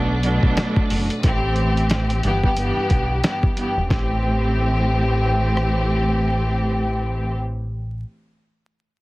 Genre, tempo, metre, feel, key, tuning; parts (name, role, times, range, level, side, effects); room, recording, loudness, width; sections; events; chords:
hip hop, boom-bap hip-hop; 90 BPM; 4/4; swing 58% on 16ths; A dorian; A4 = 438 Hz
rich studio string section; accompaniment; 0.0-7.3 s; G2 to G4; -21 LUFS; equal; cassette tape, high-pass filter, low-pass filter
tonewheel organ; sustained chords; 0.0-1.2 s; B3 to F#5; -32 LUFS; equal; chorus vibrato, slow rotary speaker, high-pass filter, low-pass filter
deep dub fingered electric bass; bass; 0.0-8.0 s; E1 to B1; -22 LUFS; equal
lo-fi sampler-style drum kit; drums; 0.2-5.8 s; hi-hat, kick drum, rim click, snare drum; -21 LUFS; equal
light reverb; heavily compressed radio sound, multiband compression, vinyl crackle; -18 LUFS; side -20 dB against mid
0.0-1.2 A section; 1.2-3.9 B section; 3.9-6.6 C section
0.0 Bm7; 1.2 Am7; 2.2 G6; 3.9 Am7